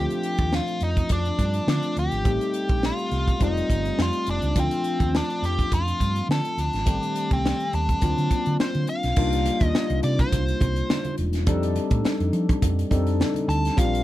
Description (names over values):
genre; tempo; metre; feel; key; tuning
polished 1980s jazz-funk pop; 104 BPM; 4/4; swing 54% on 16ths; unclear; A4 = 441 Hz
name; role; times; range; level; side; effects
nasal lead guitar with a parked wah; melody; 0.0-14.0 s; C4 to A5; -28 LUFS; equal; overdrive, slapback echo
barky tine electric piano; accompaniment; 0.0-14.0 s; Eb3 to Bb4; -27 LUFS; left 2 dB; analog chorus
hollow-body short-scale fingered electric bass; bass; 0.0-14.0 s; E1 to F3; -25 LUFS; right 1 dB; none
crisp fusion drum kit; drums; 0.1-14.0 s; crash cymbal, hi-hat, kick drum, snare drum; -26 LUFS; equal; none
congas; percussion; 9.2-13.9 s; none; -35 LUFS; right 4 dB; none
room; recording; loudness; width
little or no reverb; none; -21 LUFS; side -15 dB against mid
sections
0.0-9.2 A section; 9.2-14.0 B section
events
none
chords
0.0 Dm7; 2.3 Am7b5; 3.4 F9; 4.6 Dm7; 6.9 Am7b5; 8.0 D7alt; 9.2 Cm11; 11.5 F13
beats
0.52 1.10 1.68 | 2.25 2.83 3.41 3.98 | 4.56 5.14 5.71 6.29 | 6.87 7.44 8.02 8.59 | 9.17 9.75 10.32 10.90 | 11.47 12.05 12.62 13.20 | 13.77